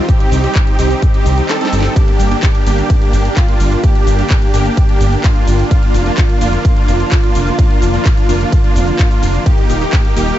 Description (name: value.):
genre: EDM, festival progressive house.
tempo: 128 BPM.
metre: 4/4.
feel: straight.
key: G minor.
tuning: A4 = 440 Hz.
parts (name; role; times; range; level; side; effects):
lush unison pad; sustained chords; 0.0-10.4 s; D3 to G4; -24 LUFS; right 1 dB; chorus, sidechain pumping.
wide unison lead; arpeggios; 0.0-10.4 s; F4 to A4; -21 LUFS; equal; ensemble chorus, sidechain pumping, dub echo.
supersaw chords; riff; 0.0-10.4 s; Bb3 to A4; -19 LUFS; right 1 dB; sidechain pumping, dub echo.
electronic kick drum; drums; 0.1-10.0 s; none; -12 LUFS; equal; none.
house drum kit; drums; 0.1-10.4 s; cabasa, handclaps, hi-hat, ride cymbal, snare drum; -25 LUFS; equal; overdrive.
wide detuned saw bass; bass; 0.3-10.3 s; Eb1 to C2; -15 LUFS; equal; chorus, sidechain pumping.
swell; sound effects; 1.2-2.0 s; none; -29 LUFS; right 2 dB; none.
room: little or no reverb.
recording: dark, warm production, nothing above 7.9 kHz.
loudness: -10 LUFS.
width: side -12 dB against mid.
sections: 0.0-10.4 A section.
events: swell 1.2-2.0; kick drops out 1.5-2.0; drum fill 1.5-2.0.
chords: 0.0 Cm; 2.0 Gm; 5.7 Bb/F; 9.5 Eb.